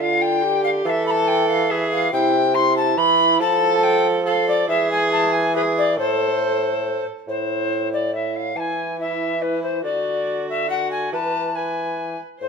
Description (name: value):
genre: classical, renaissance-style consort dance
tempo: 140 BPM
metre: 3/4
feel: straight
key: A minor, A harmonic minor from 7.3 s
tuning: A4 = 442 Hz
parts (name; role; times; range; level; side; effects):
- mellow alto recorder; melody; 0.0-12.5 s; B4 to C6; -21 LUFS; left 3 dB; none
- warm viola; second line; 0.0-12.5 s; E4 to C5; -24 LUFS; right 4 dB; none
- warm bassoon; bass; 0.0-12.5 s; A2 to F3; -24 LUFS; right 1 dB; none
room: moderate large studio reverb, RT60 1.3 s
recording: none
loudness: -18 LUFS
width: side -5 dB against mid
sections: 0.0-7.3 A section; 7.3-12.5 B section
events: none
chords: 0.0 Dm; 0.9 Esus4; 2.1 C; 3.4 F; 4.7 E; 6.0 Am; 8.6 E; 9.8 D; 11.1 E